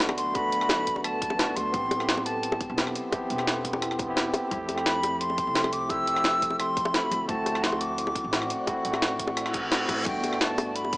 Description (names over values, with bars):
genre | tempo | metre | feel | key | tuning
liquid drum and bass | 173 BPM | 4/4 | straight | G major | A4 = 440 Hz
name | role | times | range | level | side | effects
tine electric piano | accompaniment | 0.0-11.0 s | A3 to G4 | -30 LUFS | equal | fast stereo tremolo, digital delay
ethereal airy pad | sustained chords | 0.1-11.0 s | F3 to C6 | -38 LUFS | right 1 dB | ensemble chorus, built-in reverb, phaser
upright bass | bass | 0.0-10.9 s | E1 to F2 | -39 LUFS | equal | none
jungle sampler-style drum kit | drums | 0.0-11.0 s | crash cymbal, hi-hat, rim click, snare drum | -28 LUFS | equal | none
bongos | percussion | 0.1-10.9 s | none | -32 LUFS | left 1 dB | none
bright silver concert flute | melody | 0.2-11.0 s | G5 to E6 | -28 LUFS | equal | dub echo
electronic kick drum | drums | 0.4-11.0 s | none | -38 LUFS | equal | none
reverse cymbal | sound effects | 9.5-10.1 s | none | -31 LUFS | equal | none
room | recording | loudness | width
moderate lush hall reverb, RT60 2.1 s | small speaker sound | -24 LUFS | side -23 dB against mid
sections
0.0-11.0 A section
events
reverse cymbal 9.5-10.1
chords
0.0 Gmaj9 (rootless); 1.7 Am7; 4.5 Fmaj9; 7.1 D9; 10.1 Gmaj9